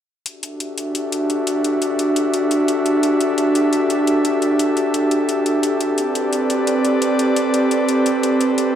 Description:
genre	liquid drum and bass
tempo	173 BPM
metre	4/4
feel	straight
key	E minor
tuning	A4 = 441 Hz
part	airy breathy pad	sustained chords	0.5-8.8 s	C4 to E5	-16 LUFS	equal	chorus
part	electronic hi-hat	drums	0.3-8.7 s	none	-26 LUFS	left 3 dB	studio reverb
room	light reverb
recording	dark, warm production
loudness	-16 LUFS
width	side -9 dB against mid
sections	0.3-8.8 A section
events	filter sweep on analog synth pad 0.3-8.8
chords	0.3 Em11; 5.8 Am11

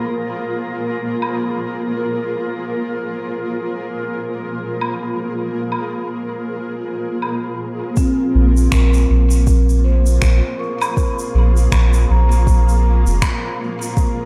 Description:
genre	ambient dub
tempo	80 BPM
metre	4/4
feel	swing 58% on 16ths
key	unclear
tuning	A4 = 443 Hz
part	granular cloud pad	sustained chords	0.0-14.3 s	Bb3 to F5	-26 LUFS	equal	built-in reverb
part	drifting glass-harmonics texture	texture	0.0-8.0 s	Bb4	-34 LUFS	equal	chorus, built-in reverb
part	woodblock, shaker and finger snaps	drums	1.2-14.1 s	none	-29 LUFS	equal	low-pass filter on perc, low-pass filter on snare, low-pass filter on room, dub echo
part	vibraphone with soft mallets	arpeggios	2.0-14.3 s	C4 to Db6	-27 LUFS	equal	tape echo
part	electronic kick drum	drums	8.0-14.1 s	none	-20 LUFS	equal	overdrive
part	soft dub sub bass	bass	8.3-13.2 s	F1 to Bb1	-15 LUFS	equal	none
room	light reverb, studio ambience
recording	none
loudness	-18 LUFS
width	mono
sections	0.0-8.0 A section; 8.0-14.3 B section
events	none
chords	0.0 Bb5; 8.0 Bbm7

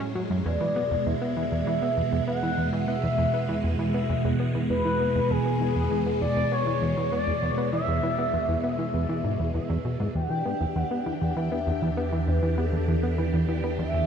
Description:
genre	ambient, sequencer-driven space music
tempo	99 BPM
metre	4/4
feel	straight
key	E minor from 10.2 s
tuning	A4 = 440 Hz
part	phased string machine	sustained chords	0.0-14.1 s	E2 to G4	-28 LUFS	right 1 dB	ensemble chorus, phaser
part	plucky analog bass	riff	0.0-14.0 s	E2 to C#4	-28 LUFS	equal	vintage 12-bit sampler grit, ping-pong delay
part	expressive synth lead	melody	0.5-14.1 s	G#4 to G5	-29 LUFS	left 1 dB	wide subtle chorus, ping-pong delay
part	analog drone	bass	11.4-14.1 s	E2	-28 LUFS	equal	chorus
room	moderate plate reverb, RT60 3.2 s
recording	echo-heavy mix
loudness	-24 LUFS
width	side -7 dB against mid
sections	0.0-10.2 A section; 10.2-14.1 B section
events	none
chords	0.5 E; 10.2 Em7

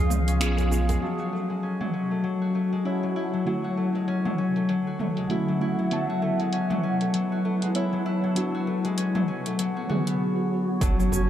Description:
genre	organic downtempo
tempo	98 BPM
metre	4/4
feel	swing 58% on 16ths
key	unclear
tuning	A4 = 440 Hz
part	muted felt-like synth keys	accompaniment	0.0-11.3 s	D3 to A5	-32 LUFS	right 3 dB	chorus, sidechain pumping, analog delay
part	granular cloud pad	sustained chords	0.0-11.3 s	D3 to A5	-32 LUFS	right 2 dB	built-in reverb, sidechain pumping
part	concert harp	arpeggios	0.0-11.3 s	E#3 to F#4	-26 LUFS	left 2 dB	low-pass filter, analog delay
part	round analog bass	bass	0.0-1.0, 10.8-11.3 s	F#1 to C#2	-24 LUFS	right 1 dB	sidechain pumping
part	deep house drum kit	drums	0.1-11.3 s	cabasa, finger snaps, hi-hat, toms	-32 LUFS	equal	low-pass filter on perc, low-pass filter on hats, low-pass filter on snare, low-pass filter on toms, low-pass filter on room
part	djembe	percussion	0.1-1.0, 11.1-11.3 s	none	-33 LUFS	right 4 dB	none
part	electronic kick drum	drums	10.8-11.0 s	none	-24 LUFS	right 1 dB	none
part	impact	sound effects	10.8-11.3 s	none	-29 LUFS	equal	none
room	moderate spring reverb, RT60 2.6 s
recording	echo-heavy mix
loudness	-23 LUFS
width	side -11 dB against mid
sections	0.0-1.0 A section; 1.0-10.8 B section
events	band accent 0.4-0.7; filter sweep on drum 1.0-10.8; filter sweep on ambient pad 1.0-10.8; impact 10.8-11.3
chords	0.0 C#7; 1.0 F#m; 3.5 Dmaj7; 5.9 Esus4

